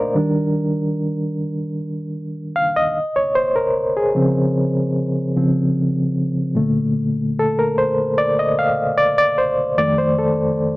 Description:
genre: soul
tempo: 75 BPM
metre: 4/4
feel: straight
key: unclear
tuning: A4 = 440 Hz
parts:
  - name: reed electric piano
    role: solo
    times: 0.0-10.8 s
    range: F2 to F5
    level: -16 LUFS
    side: equal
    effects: overdrive, fast tremolo
room: light reverb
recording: dry, close 1970s-style studio recording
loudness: -16 LUFS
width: side -20 dB against mid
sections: 0.0-10.8 A section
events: reed electric piano solo 0.0-10.8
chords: 0.2 Ebmaj7; 3.0 Dbmaj7; 6.6 Bbmaj7; 9.8 F7

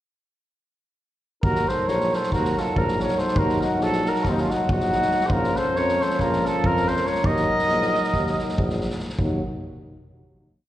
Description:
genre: balkan folk, Balkan brass band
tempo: 278 BPM (eighths)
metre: 9/8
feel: straight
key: Eb dorian sharp4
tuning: A4 = 440 Hz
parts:
  - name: mellow cornet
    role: melody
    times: 1.4-8.8 s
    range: Eb4 to Eb5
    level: -23 LUFS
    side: equal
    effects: slapback echo
  - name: mellow flugelhorn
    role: second line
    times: 1.4-8.8 s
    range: Bb3 to Bb4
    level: -30 LUFS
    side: equal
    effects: slapback echo
  - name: warm euphonium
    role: accompaniment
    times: 1.4-9.4 s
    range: Db4 to Eb4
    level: -30 LUFS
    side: left 4 dB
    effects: slapback echo
  - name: warm tuba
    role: bass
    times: 1.4-9.4 s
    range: Bb1 to F2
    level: -27 LUFS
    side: equal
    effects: none
  - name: street-band drum kit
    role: percussion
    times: 1.4-9.4 s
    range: kick drum, snare drum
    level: -27 LUFS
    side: equal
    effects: none
  - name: clear trombone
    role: accompaniment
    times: 1.5-9.4 s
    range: F3 to Gb3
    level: -32 LUFS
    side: right 3 dB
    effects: slapback echo
room: light reverb, small room ambience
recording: live gig heard through the venue's PA, recital hall reverb, nothing above 10.9 kHz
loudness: -20 LUFS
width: side -13 dB against mid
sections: 1.4-9.2 A section; 9.2-10.7 final chord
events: none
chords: 1.4 Ebm; 5.3 Bbm; 7.2 Ebm

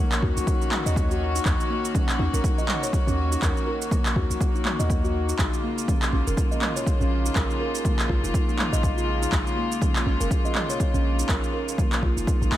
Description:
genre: afro house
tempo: 122 BPM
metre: 4/4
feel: swing 58% on 16ths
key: Eb minor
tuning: A4 = 440 Hz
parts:
  - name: rich chamber string section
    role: sustained chords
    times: 0.0-12.6 s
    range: Db3 to Gb4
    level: -30 LUFS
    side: left 3 dB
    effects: sidechain pumping
  - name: kalimba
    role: arpeggios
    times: 0.0-12.6 s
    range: Bb3 to Eb5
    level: -29 LUFS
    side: right 1 dB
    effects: sidechain pumping, digital delay
  - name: deep house drum kit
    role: drums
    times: 0.1-12.6 s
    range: handclaps, shaker, toms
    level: -30 LUFS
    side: right 1 dB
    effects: overdrive
  - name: warm 808-style bass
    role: bass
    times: 0.2-12.6 s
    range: F1 to Eb2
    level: -25 LUFS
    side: equal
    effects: sidechain pumping
  - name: electronic kick drum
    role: drums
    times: 0.2-12.4 s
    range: none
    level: -25 LUFS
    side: equal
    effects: overdrive
room: studio reverb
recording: none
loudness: -21 LUFS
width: side -13 dB against mid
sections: 0.0-12.6 A section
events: none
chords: 0.0 Ebm7; 5.4 Bbm7

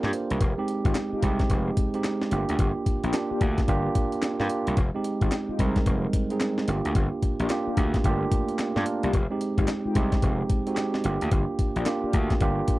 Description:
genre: R&B, new jack swing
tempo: 110 BPM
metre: 4/4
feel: swing 63% on 16ths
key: F dorian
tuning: A4 = 440 Hz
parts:
  - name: tine electric piano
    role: accompaniment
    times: 0.0-12.8 s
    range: G3 to D5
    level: -27 LUFS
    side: right 3 dB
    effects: none
  - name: gritty slap bass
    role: bass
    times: 0.0-12.6 s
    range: F1 to G2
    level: -28 LUFS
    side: left 1 dB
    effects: overdrive
  - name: breakbeat sampler-style drum kit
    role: drums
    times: 0.0-12.8 s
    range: handclaps, hi-hat, kick drum, snare drum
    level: -26 LUFS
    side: left 1 dB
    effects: none
  - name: mellow synth brass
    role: stabs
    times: 0.8-12.2 s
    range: Ab3 to G4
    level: -33 LUFS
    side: left 5 dB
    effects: chorus
room: little or no reverb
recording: dry, close 1970s-style studio recording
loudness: -23 LUFS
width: side -18 dB against mid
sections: 0.0-12.8 A section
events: none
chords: 0.4 Fm9; 2.3 Gm7; 4.8 Fm9; 6.7 Gm7; 9.1 Fm9; 11.0 Gm7

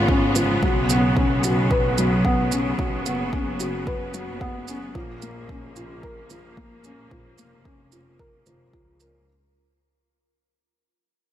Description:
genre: piano and strings electronica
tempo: 111 BPM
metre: 4/4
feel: straight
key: unclear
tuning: A4 = 440 Hz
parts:
  - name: bright symphonic string section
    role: sustained chords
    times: 0.0-9.2 s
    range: C#3 to E#4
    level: -26 LUFS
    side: right 1 dB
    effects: sidechain pumping
  - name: felt-muted upright piano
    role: riff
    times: 0.0-9.3 s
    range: E#3 to B4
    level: -25 LUFS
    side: left 2 dB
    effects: digital delay
  - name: clear studio double bass section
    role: bass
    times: 0.0-9.2 s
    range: E#1 to C#2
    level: -27 LUFS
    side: equal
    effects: sidechain pumping
  - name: electronic kick drum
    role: drums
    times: 0.1-8.8 s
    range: none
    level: -26 LUFS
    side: equal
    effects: overdrive
  - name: shaker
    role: drums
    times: 0.4-9.1 s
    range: none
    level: -30 LUFS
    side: right 8 dB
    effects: overdrive
room: light reverb, small room ambience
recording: none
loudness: -20 LUFS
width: side -11 dB against mid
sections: 0.0-9.3 A section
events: fade-out 0.0-9.3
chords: 0.0 C#7; 0.6 Bsus2; 4.9 A#m

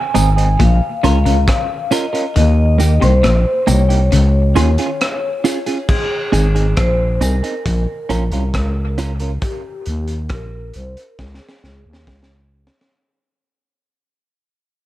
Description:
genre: dub reggae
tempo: 68 BPM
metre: 4/4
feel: straight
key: Ab major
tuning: A4 = 436 Hz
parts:
  - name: vibraphone with medium hard mallets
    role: melody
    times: 0.0-12.0 s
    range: G4 to Ab5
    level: -22 LUFS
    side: left 2 dB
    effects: low-pass filter, dub echo
  - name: clean electric guitar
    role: accompaniment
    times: 0.1-9.3 s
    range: Bb3 to Bb4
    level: -21 LUFS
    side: right 5 dB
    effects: phaser, low-pass filter, dub echo
  - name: electric guitar at the edge of break-up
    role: riff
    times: 0.1-4.7 s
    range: Ab2 to Eb3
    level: -21 LUFS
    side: left 5 dB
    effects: dub echo
  - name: crunchy breakbeat drum kit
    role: drums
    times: 0.1-13.0 s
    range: crash cymbal, hi-hat, kick drum, rim click, snare drum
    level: -22 LUFS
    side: equal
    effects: none
  - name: growling FM bass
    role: bass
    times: 0.2-12.7 s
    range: Ab1 to Eb2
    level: -14 LUFS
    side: equal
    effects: none
  - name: tambourine and woodblock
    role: percussion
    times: 0.2-9.2 s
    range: none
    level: -29 LUFS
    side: equal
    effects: dub echo
room: light reverb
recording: dark, warm production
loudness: -13 LUFS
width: side -15 dB against mid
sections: 0.0-5.9 A section; 5.9-13.0 B section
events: kick muted 2.4-5.9; fade-out 5.9-13.0; filter sweep 5.9-13.0; break 9.4-13.0; drum fill 11.2-13.0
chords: 0.0 Ab; 0.6 Bbm; 2.4 Eb; 4.1 Db; 5.9 Ab; 7.7 Bbm; 9.4 Eb; 11.2 Db5

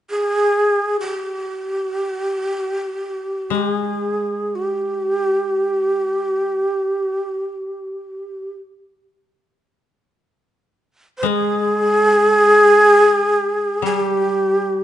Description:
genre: japanese traditional, Japanese chamber music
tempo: free time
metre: none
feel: none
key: unclear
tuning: A4 = 437 Hz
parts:
  - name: breathy shakuhachi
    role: melody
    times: 0.1-14.8 s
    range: G4 to C5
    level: -16 LUFS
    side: equal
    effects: none
  - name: koto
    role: accompaniment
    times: 3.5-6.6, 11.2-14.8 s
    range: G3 to Ab3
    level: -26 LUFS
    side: left 4 dB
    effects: none
room: wet recital hall reverb, RT60 1.3 s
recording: nothing above 10.6 kHz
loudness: -16 LUFS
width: side -12 dB against mid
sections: 0.0-14.8 A section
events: none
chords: none

